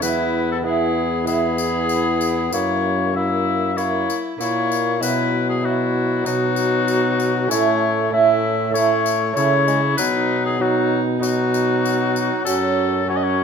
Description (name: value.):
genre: classical, renaissance-style consort dance.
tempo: 97 BPM.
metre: 4/4.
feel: straight.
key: unclear.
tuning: A4 = 443 Hz.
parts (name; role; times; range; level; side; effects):
clear oboe; melody; 0.0-13.4 s; F#4 to E5; -23 LUFS; left 7 dB; none.
warm viola; second line; 0.0-13.4 s; C#4 to E4; -26 LUFS; right 3 dB; none.
lute; accompaniment; 0.0-13.4 s; E2 to F#4; -24 LUFS; right 8 dB; none.
warm bassoon; accompaniment; 0.0-13.4 s; F#3 to B3; -24 LUFS; left 1 dB; none.
warm trombone; bass; 0.0-13.4 s; E2 to C#3; -23 LUFS; equal; none.
tambourine; percussion; 0.0-12.8 s; none; -31 LUFS; left 6 dB; none.
room: moderate stone room reverb, RT60 1.4 s.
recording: minimal, uncompressed stereo recording.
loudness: -17 LUFS.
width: side -6 dB against mid.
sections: 0.0-13.4 A section.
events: none.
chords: 0.0 E; 2.5 F#7; 5.0 Bsus4; 6.3 B; 7.5 A; 10.0 B; 12.5 F#m.